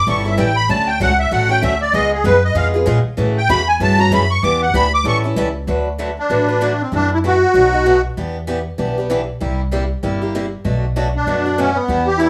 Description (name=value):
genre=acoustic string swing (jazz manouche)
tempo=193 BPM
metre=4/4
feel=swing 60% on 8ths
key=D major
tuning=A4 = 439 Hz
part: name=musette accordion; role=melody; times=0.0-8.0, 11.2-12.3 s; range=B3 to D6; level=-18 LUFS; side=equal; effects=none
part: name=upright bass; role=bass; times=0.0-12.3 s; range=G1 to Bb2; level=-22 LUFS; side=equal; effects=none
part: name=picked swing-style acoustic guitar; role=accompaniment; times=0.1-12.3 s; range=B2 to B4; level=-23 LUFS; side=equal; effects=none
room=light reverb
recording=studio ambience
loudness=-17 LUFS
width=mono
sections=0.0-5.7 A section; 5.7-12.3 B section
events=accordion solo 0.0-5.7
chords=0.0 A7; 0.7 Dmaj7; 1.9 C#7; 3.2 F#m7; 4.4 Em7; 5.1 A7; 5.7 D6; 6.9 F#m7b5; 7.5 B7; 8.2 Em7; 9.4 C7; 10.6 Bm7